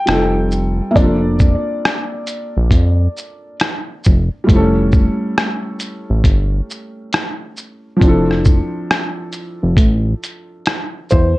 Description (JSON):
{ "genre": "lo-fi hip hop", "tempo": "68 BPM", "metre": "4/4", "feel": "swing 64% on 16ths", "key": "unclear", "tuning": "A4 = 440 Hz", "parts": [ { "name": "felt-muted upright piano", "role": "melody", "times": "0.0-3.6, 11.1-11.4 s", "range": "C5 to G5", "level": "-22 LUFS", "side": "left 1 dB", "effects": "low-pass filter, analog delay, plate reverb" }, { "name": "dark upright piano", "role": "accompaniment", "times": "0.0-11.4 s", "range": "F3 to A4", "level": "-19 LUFS", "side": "equal", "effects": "cassette tape, low-pass filter, plate reverb" }, { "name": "fat analog bass", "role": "bass", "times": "0.1-11.4 s", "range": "F1 to F2", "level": "-16 LUFS", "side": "equal", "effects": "none" }, { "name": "lo-fi sampler-style drum kit", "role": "drums", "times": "0.1-11.4 s", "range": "hi-hat, kick drum, rim click, shaker", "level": "-14 LUFS", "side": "equal", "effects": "none" } ], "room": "light reverb", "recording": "cassette tape", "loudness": "-13 LUFS", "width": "side -19 dB against mid", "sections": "0.0-11.4 A section", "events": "none", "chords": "0.1 F9; 1.0 Bbmaj9/F; 4.5 A7/F; 8.0 Dm9/F" }